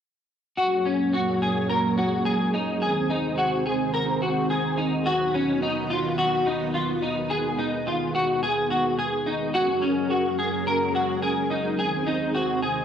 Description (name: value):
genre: dream pop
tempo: 107 BPM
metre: 4/4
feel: straight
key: F# major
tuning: A4 = 440 Hz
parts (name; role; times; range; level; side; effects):
- string machine, cellos; sustained chords; 0.6-12.8 s; D#3 to C#5; -26 LUFS; right 2 dB; ensemble chorus
- clean electric guitar; arpeggios; 0.6-12.8 s; C#4 to A#4; -24 LUFS; left 1 dB; ensemble chorus, analog delay
room: moderate lush hall reverb, RT60 1.8 s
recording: dry, gritty hardware recording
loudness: -22 LUFS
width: side -8 dB against mid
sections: 0.6-12.8 A section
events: none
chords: 0.6 F#add9; 2.8 G#; 5.1 B; 7.3 G#m; 9.5 F#add9; 11.8 G#